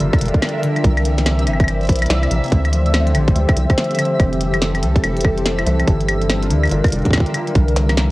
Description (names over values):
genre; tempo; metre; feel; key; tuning
IDM; 143 BPM; 4/4; swing 62% on 16ths; F major; A4 = 442 Hz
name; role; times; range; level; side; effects
phased analog pad; sustained chords; 0.0-8.1 s; C3 to E5; -23 LUFS; equal; phaser, chorus
concert harp; arpeggios; 0.0-8.1 s; D3 to Bb4; -22 LUFS; left 1 dB; analog delay
rubbery square bass; bass; 0.0-8.1 s; F1 to D2; -18 LUFS; equal; none
glitchy drum kit; drums; 0.0-8.1 s; claves, hi-hat, snare drum; -22 LUFS; equal; cassette tape
twinkling granular texture; texture; 0.0-8.1 s; E5; -30 LUFS; right 1 dB; built-in reverb, sidechain pumping
electronic kick drum; drums; 0.1-7.7 s; none; -15 LUFS; equal; cassette tape
room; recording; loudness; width
light reverb; home recording on cassette; -14 LUFS; side -19 dB against mid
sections
0.0-8.1 A section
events
none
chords
0.0 Gm7; 0.8 C7; 2.5 Dm11; 4.2 Fmaj9; 5.9 Gm7; 7.6 C7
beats
0.00 0.42 | 0.84 1.26 1.68 2.10 | 2.52 2.94 3.36 3.78 | 4.20 4.62 5.04 5.46 | 5.88 6.29 6.71 7.13 | 7.55 7.97